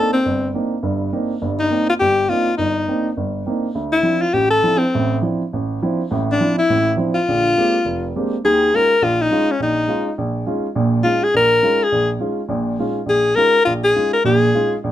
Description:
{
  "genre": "jazz",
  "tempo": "206 BPM",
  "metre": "4/4",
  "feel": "swing 62% on 8ths",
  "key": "C dorian",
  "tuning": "A4 = 439 Hz",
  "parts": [
    { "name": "bright alto saxophone", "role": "melody", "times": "0.0-14.8 s", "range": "C4 to Bb4", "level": "-16 LUFS", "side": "left 2 dB", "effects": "none" },
    { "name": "dark upright piano", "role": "accompaniment", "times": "0.0-14.9 s", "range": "F1 to G4", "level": "-20 LUFS", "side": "right 2 dB", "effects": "none" }
  ],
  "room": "moderate club reverb, RT60 0.8 s",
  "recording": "close, detailed microphones",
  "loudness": "-15 LUFS",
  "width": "side -12 dB against mid",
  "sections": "0.0-8.4 A section; 8.4-14.9 B section",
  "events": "none",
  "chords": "0.0 Cm9; 3.8 Dm9; 7.3 Bb13; 8.4 Eb9sus4"
}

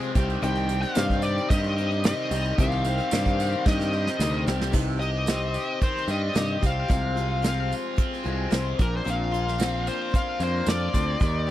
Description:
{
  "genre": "folk rock and heartland rock",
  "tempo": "111 BPM",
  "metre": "4/4",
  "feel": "straight",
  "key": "C minor",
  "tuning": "A4 = 441 Hz",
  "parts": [
    { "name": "picked acoustic archtop guitar", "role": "accompaniment", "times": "0.0-11.5 s", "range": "F2 to Ab4", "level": "-31 LUFS", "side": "left 4 dB", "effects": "none" },
    { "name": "tonewheel organ", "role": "sustained chords", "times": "0.0-11.5 s", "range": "A3 to D5", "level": "-40 LUFS", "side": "right 1 dB", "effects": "none" },
    { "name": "overdriven electric guitar", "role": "riff", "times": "0.0-11.5 s", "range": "Bb2 to Ab4", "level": "-32 LUFS", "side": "right 1 dB", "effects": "phaser" },
    { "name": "soft brush drum kit", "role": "drums", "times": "0.0-11.5 s", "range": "crash cymbal, hi-hat, kick drum, snare drum", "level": "-24 LUFS", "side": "right 1 dB", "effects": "none" },
    { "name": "picked electric bass", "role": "bass", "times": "0.2-11.5 s", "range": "Bb1 to G2", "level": "-27 LUFS", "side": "equal", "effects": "none" },
    { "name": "tambourine", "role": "percussion", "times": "0.2-11.3 s", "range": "none", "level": "-42 LUFS", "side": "right 11 dB", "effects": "none" },
    { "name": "smooth overdriven lead guitar", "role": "melody", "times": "0.4-11.5 s", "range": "Bb4 to G5", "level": "-29 LUFS", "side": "left 2 dB", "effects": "none" }
  ],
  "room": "small room ambience",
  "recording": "dry, close 1970s-style studio recording",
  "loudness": "-22 LUFS",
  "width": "side -13 dB against mid",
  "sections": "0.0-4.7 A section; 4.7-11.5 B section",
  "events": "drum fill 3.7-4.7; lead electric guitar solo 4.7-11.5",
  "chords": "0.2 Cm; 6.9 Fm/C; 8.8 Bbadd9"
}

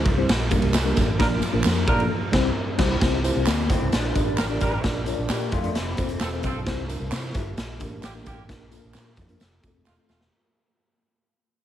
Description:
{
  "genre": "uptempo 1960s-style soul",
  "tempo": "132 BPM",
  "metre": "4/4",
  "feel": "straight",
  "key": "C mixolydian",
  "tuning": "A4 = 440 Hz",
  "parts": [
    { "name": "vintage muted fingered electric bass", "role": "bass", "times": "0.1-10.3 s", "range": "E1 to C3", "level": "-28 LUFS", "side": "equal", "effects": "none" },
    { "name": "raw garage drum kit", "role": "drums", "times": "0.1-10.3 s", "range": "crash cymbal, hi-hat, kick drum, ride cymbal, snare drum", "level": "-25 LUFS", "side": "equal", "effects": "none" },
    { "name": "mellow tine electric piano", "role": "accompaniment", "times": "0.2-10.2 s", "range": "F3 to E5", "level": "-28 LUFS", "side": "left 1 dB", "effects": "medium stereo tremolo" },
    { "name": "tambourine and handclaps", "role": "percussion", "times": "0.3-10.2 s", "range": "none", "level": "-36 LUFS", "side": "right 5 dB", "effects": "none" },
    { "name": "clear horn section", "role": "second line", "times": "1.2-10.2 s", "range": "C3 to Bb4", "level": "-30 LUFS", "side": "right 2 dB", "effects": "none" },
    { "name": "electric guitar through a small old amp", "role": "riff", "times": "2.3-6.4 s", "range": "D3 to G4", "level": "-30 LUFS", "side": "left 3 dB", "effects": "analog chorus" }
  ],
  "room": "light reverb",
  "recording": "heavily compressed radio sound",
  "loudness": "-21 LUFS",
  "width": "side -11 dB against mid",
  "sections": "0.0-3.0 A section; 3.0-10.3 B section",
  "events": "band accent 1.2-3.0; fade-out 3.0-10.3; drum fill 9.9-10.3",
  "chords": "0.3 Gm/Bb; 1.2 Bb; 2.1 C; 3.9 Gm; 4.8 Bb; 5.8 F; 6.7 C; 7.6 Gm; 8.5 Bb; 9.4 F"
}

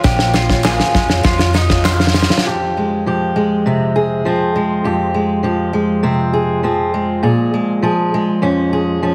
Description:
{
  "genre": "indie folk with a building arrangement",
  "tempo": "100 BPM",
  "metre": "4/4",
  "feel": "straight",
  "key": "F minor",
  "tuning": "A4 = 440 Hz",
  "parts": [
    { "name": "fingerpicked steel-string acoustic guitar", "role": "accompaniment", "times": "0.0-9.1 s", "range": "F2 to Ab4", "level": "-16 LUFS", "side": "equal", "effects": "none" },
    { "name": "picked acoustic archtop guitar", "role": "accompaniment", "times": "0.0-2.5 s", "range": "Bb2 to F4", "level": "-24 LUFS", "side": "equal", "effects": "none" },
    { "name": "mandolin", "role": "arpeggios", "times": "0.0-2.4 s", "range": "Eb4 to Ab4", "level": "-24 LUFS", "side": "equal", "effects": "none" },
    { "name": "upright bass", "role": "bass", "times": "0.0-2.2 s", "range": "Bb1 to F2", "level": "-20 LUFS", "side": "equal", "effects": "none" },
    { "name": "loose indie drum kit", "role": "drums", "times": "0.0-2.5 s", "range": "kick drum, snare drum", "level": "-18 LUFS", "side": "equal", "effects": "none" },
    { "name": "tambourine", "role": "percussion", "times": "0.0-2.3 s", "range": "none", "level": "-37 LUFS", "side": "equal", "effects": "none" },
    { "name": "group handclap", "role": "percussion", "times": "0.6-2.0 s", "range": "none", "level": "-30 LUFS", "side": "equal", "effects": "none" }
  ],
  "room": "light reverb",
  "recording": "heavily compressed radio sound",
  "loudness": "-16 LUFS",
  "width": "mono",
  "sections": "0.0-2.5 A section; 2.5-9.1 B section",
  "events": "build-up 0.0-2.5; drum fill 0.0-2.5",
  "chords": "0.0 Bbm7; 2.5 Fmadd9; 7.2 Bbm7"
}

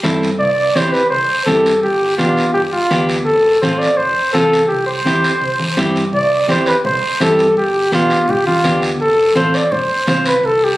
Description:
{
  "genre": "latin, cumbia",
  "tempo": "168 BPM",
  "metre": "4/4",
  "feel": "straight",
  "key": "C major",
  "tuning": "A4 = 441 Hz",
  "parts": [
    { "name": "electric guitar at the edge of break-up", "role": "accompaniment", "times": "0.0-10.3 s", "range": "B3 to C5", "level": "-19 LUFS", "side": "equal", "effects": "none" },
    { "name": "hollow-body short-scale fingered electric bass", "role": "bass", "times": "0.0-10.7 s", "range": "F1 to G2", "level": "-25 LUFS", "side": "equal", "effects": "none" },
    { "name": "congas", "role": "percussion", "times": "0.0-10.3 s", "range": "none", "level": "-22 LUFS", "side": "equal", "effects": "none" },
    { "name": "guiro", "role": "percussion", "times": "0.0-10.8 s", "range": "none", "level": "-25 LUFS", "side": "right 1 dB", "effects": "none" },
    { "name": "trumpet with bucket mute", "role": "melody", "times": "0.4-10.8 s", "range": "F4 to D5", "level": "-14 LUFS", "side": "equal", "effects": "none" }
  ],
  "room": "moderate studio reverb, RT60 0.8 s",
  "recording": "recorded on a phone in the room, club reverb, compression",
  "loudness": "-12 LUFS",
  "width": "side -17 dB against mid",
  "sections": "0.0-6.1 A section; 6.1-10.8 A section",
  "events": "none",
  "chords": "0.0 C; 1.8 G7; 3.3 F; 4.7 C; 7.6 G7; 9.0 F"
}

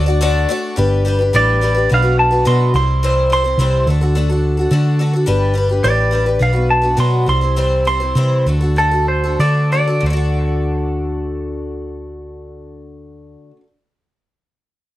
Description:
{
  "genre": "folk rock and heartland rock",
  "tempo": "91-107 BPM",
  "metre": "4/4",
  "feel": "straight",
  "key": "D mixolydian",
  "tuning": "A4 = 440 Hz",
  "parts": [
    { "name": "picked twelve-string acoustic guitar", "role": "accompaniment", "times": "0.0-13.7 s", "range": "B2 to D5", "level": "-19 LUFS", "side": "left 2 dB", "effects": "none" },
    { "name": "hollow-body short-scale picked electric bass", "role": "bass", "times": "0.0-13.3 s", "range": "G1 to D3", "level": "-16 LUFS", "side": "equal", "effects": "none" },
    { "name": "clean electric guitar", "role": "melody", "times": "1.4-10.0 s", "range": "A4 to C6", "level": "-18 LUFS", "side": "right 1 dB", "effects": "tape echo" }
  ],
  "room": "light reverb",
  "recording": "none",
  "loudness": "-13 LUFS",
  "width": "side -15 dB against mid",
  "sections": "0.8-10.1 A section; 10.1-12.7 B section",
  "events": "clean electric guitar solo 0.8-10.1; slowing down 5.3-10.1",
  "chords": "0.0 D; 0.8 G; 1.9 Bm; 2.7 C; 3.9 D; 5.3 G; 6.4 Bm; 7.3 C; 8.5 D"
}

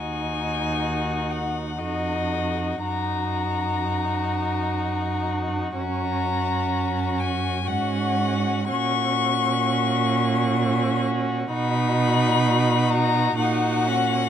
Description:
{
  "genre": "classical, slow romantic movement for string quartet",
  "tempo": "62 BPM",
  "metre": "3/4",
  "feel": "uneven beats, rubato",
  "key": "Eb minor",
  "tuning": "A4 = 439 Hz",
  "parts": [
    { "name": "rich violin", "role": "melody", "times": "0.0-14.3 s", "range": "Eb5 to Db6", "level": "-27 LUFS", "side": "left 7 dB", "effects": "none" },
    { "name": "warm violin", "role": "second line", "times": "0.0-14.3 s", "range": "Gb4 to F#4", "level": "-28 LUFS", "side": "left 4 dB", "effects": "none" },
    { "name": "rich viola", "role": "accompaniment", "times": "0.0-14.3 s", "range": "Db4 to D#4", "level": "-28 LUFS", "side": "right 4 dB", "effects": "none" },
    { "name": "rich cello", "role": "bass", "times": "0.0-14.3 s", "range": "Eb2 to B2", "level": "-26 LUFS", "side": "right 3 dB", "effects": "none" }
  ],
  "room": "light reverb",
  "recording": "close, detailed microphones",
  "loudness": "-21 LUFS",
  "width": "side -9 dB against mid",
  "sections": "0.0-14.3 A section",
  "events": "none",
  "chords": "0.0 Ebm; 2.9 Ebm/Gb; 5.8 Gb; 8.7 Gb/Bb; 11.5 Bmaj7"
}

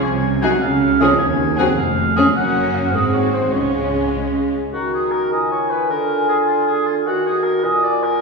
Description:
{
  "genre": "quick classical-period movement for symphony orchestra",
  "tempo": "103 BPM (dotted quarters)",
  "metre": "6/8",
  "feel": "straight",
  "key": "Db major, Eb minor from 4.7 s",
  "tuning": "A4 = 441 Hz",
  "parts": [
    { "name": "rich chamber violin section", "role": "melody", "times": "0.0-4.5 s", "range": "F4 to Ab4", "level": "-26 LUFS", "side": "left 3 dB", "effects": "none" },
    { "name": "warm chamber violin section", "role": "second line", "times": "0.0-4.5 s", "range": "C4 to Eb4", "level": "-22 LUFS", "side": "left 1 dB", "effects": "none" },
    { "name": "warm oboe", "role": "second line", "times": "0.0-8.2 s", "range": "F4 to Ab5", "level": "-21 LUFS", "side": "right 1 dB", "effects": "none" },
    { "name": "rich chamber viola section", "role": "accompaniment", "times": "0.0-4.5 s", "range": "F3 to Bb3", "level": "-25 LUFS", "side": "left 1 dB", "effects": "none" },
    { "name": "clear chamber cello section", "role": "bass", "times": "0.0-4.5 s", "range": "Eb2 to Db3", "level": "-22 LUFS", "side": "right 4 dB", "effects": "none" },
    { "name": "dark symphonic double bass section", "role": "bass", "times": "0.0-4.5 s", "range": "F1 to Eb2", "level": "-24 LUFS", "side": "right 2 dB", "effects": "none" },
    { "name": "mellow clarinet", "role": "second line", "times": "4.7-8.2 s", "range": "F4 to Gb4", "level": "-23 LUFS", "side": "right 1 dB", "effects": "none" },
    { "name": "mellow concert flute", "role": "second line", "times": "4.7-8.2 s", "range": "Gb5 to Bb5", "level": "-22 LUFS", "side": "left 7 dB", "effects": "none" },
    { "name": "mellow bassoon", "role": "accompaniment", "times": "4.7-8.2 s", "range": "Bb2 to Eb3", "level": "-22 LUFS", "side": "right 5 dB", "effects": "none" }
  ],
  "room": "wet concert hall reverb, RT60 2.0 s",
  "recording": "heard from further back in the room, studio ambience",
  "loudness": "-15 LUFS",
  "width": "side -3 dB against mid",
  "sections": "0.0-4.7 A section; 4.7-8.2 B section",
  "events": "none",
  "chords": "0.0 Ab7/C; 0.6 Db; 1.2 Ab7(no3)/Eb; 1.8 N.C.; 2.4 Gb; 2.9 Ab7; 3.5 Db; 4.7 Ebm; 5.9 Bb7/D; 7.1 Ebm; 7.6 Bb5"
}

